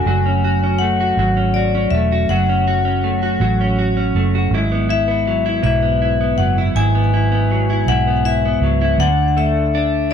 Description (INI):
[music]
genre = six-eight pop ballad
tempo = 54 BPM (dotted quarters)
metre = 6/8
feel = straight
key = unclear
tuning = A4 = 440 Hz
[part]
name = vibraphone with hard mallets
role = melody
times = 0.0-10.1 s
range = D5 to G#5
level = -20 LUFS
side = left 10 dB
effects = tape echo
[part]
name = direct-recorded clean electric guitar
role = accompaniment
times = 0.0-10.1 s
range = G#2 to F#4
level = -18 LUFS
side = right 2 dB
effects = double-tracked left and right
[part]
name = vintage muted fingered electric bass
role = bass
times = 0.0-10.1 s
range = E1 to D2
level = -18 LUFS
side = right 2 dB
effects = none
[sound]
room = light reverb, small room ambience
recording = none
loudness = -14 LUFS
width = side -8 dB against mid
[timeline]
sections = 0.0-9.0 A section; 9.0-10.1 B section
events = none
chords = 0.1 F#m; 4.5 Eadd9; 9.0 Dsus2